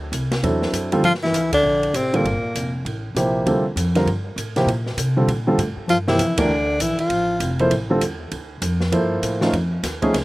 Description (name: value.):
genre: modal jazz.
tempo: 198 BPM.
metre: 4/4.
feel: swing 61% on 8ths.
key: G dorian.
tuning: A4 = 439 Hz.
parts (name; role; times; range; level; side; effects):
upright bass; bass; 0.0-10.2 s; F1 to C3; -25 LUFS; equal; none.
open jazz drum kit; drums; 0.1-10.2 s; hi-hat, kick drum, ride cymbal, snare drum; -28 LUFS; right 1 dB; none.
warm baby grand piano; accompaniment; 0.4-10.1 s; C3 to C5; -20 LUFS; right 1 dB; none.
warm tenor saxophone; melody; 1.0-2.8, 5.9-7.6 s; Bb3 to F4; -20 LUFS; equal; slapback echo.
breathy bass clarinet; second line; 1.0-2.7, 5.9-7.6 s; Bb2 to F3; -25 LUFS; left 3 dB; none.
room: little or no reverb.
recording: recorded outdoors, with no room sound.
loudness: -18 LUFS.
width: side -19 dB against mid.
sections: 0.0-1.0 A section; 1.0-10.2 B section.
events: band accent 1.5, 6.3.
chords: 0.0 D7; 1.0 Gm7; 5.9 Dm; 9.5 F7alt.